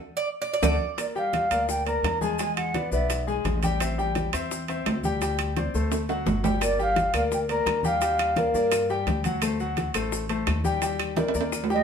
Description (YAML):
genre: latin, salsa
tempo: 171 BPM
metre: 4/4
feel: straight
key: G minor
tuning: A4 = 440 Hz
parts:
  - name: Cuban tres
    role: melody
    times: 0.2-1.0 s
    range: D5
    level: -27 LUFS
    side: right 4 dB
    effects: none
  - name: bright concert grand piano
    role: accompaniment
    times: 0.6-11.8 s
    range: F#3 to Ab5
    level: -28 LUFS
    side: left 3 dB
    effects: none
  - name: upright bass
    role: bass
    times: 0.6-11.8 s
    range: G1 to G2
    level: -30 LUFS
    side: equal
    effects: none
  - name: bongos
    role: percussion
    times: 0.6-11.8 s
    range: none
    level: -35 LUFS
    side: left 4 dB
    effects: none
  - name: claves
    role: percussion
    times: 0.6-0.7, 6.6-11.7 s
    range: none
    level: -37 LUFS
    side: left 4 dB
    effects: none
  - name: congas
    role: percussion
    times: 0.6-11.8 s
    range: none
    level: -33 LUFS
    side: left 1 dB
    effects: none
  - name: maracas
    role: percussion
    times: 0.6-11.8 s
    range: none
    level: -39 LUFS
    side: left 4 dB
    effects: none
  - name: timbales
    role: percussion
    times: 0.6-11.8 s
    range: none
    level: -31 LUFS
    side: right 7 dB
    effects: none
  - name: mellow silver concert flute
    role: melody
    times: 1.0-3.2, 6.6-8.9, 11.7-11.8 s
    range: D5 to Bb5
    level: -26 LUFS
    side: right 1 dB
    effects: none
room: wet studio reverb, RT60 0.7 s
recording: band playing live in one room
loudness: -23 LUFS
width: side -7 dB against mid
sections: 1.0-11.8 A section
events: drum fill 0.0-1.0, 5.9-6.6, 11.2-11.8; band accent 0.0-1.0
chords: 0.0 D; 1.0 Gm7; 2.4 E7; 3.8 Am7; 5.2 D7sus4; 5.9 D7; 6.6 Gm7; 8.0 Ebmaj9; 9.4 D7b9; 10.8 Ebmaj7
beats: 0.28 0.63 | 0.98 1.33 1.69 2.04 | 2.39 2.75 3.10 3.45 | 3.80 4.16 4.51 4.86 | 5.21 5.56 5.91 6.26 | 6.62 6.97 7.32 7.67 | 8.02 8.37 8.72 9.07 | 9.42 9.77 10.12 10.47 | 10.82 11.17 11.52